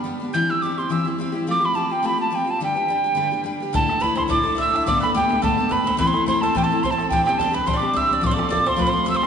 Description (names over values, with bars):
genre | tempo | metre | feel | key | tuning
celtic folk, Celtic reel | 213 BPM | 4/4 | swing 53% on 8ths | G mixolydian | A4 = 443 Hz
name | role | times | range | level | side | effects
picked steel-string acoustic guitar | accompaniment | 0.0-9.3 s | G2 to B4 | -23 LUFS | left 2 dB | none
mellow wooden whistle | melody | 0.3-9.3 s | G5 to G6 | -21 LUFS | right 2 dB | none
bowl-back mandolin | second line | 3.7-9.3 s | G4 to E5 | -28 LUFS | right 2 dB | none
bodhran | percussion | 3.7-9.3 s | none | -28 LUFS | left 1 dB | none
room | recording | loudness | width
wet church reverb, RT60 2.7 s | recorded in a church or concert hall, nothing above 10.3 kHz | -18 LUFS | side -7 dB against mid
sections
0.0-3.7 A section; 3.7-9.3 B section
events
none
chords
0.3 C/G; 1.5 Fadd9; 2.6 G; 3.7 Dsus2; 4.9 Gadd9; 6.0 Am; 7.1 Cadd9; 8.2 F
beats
0.06 | 0.35 0.63 0.91 1.20 | 1.48 1.76 2.05 2.33 | 2.61 2.89 3.18 3.46 | 3.74 4.02 4.30 4.58 | 4.87 5.15 5.43 5.71 | 5.99 6.27 6.55 6.83 | 7.11 7.39 7.67 7.96 | 8.23 8.52 8.80 9.08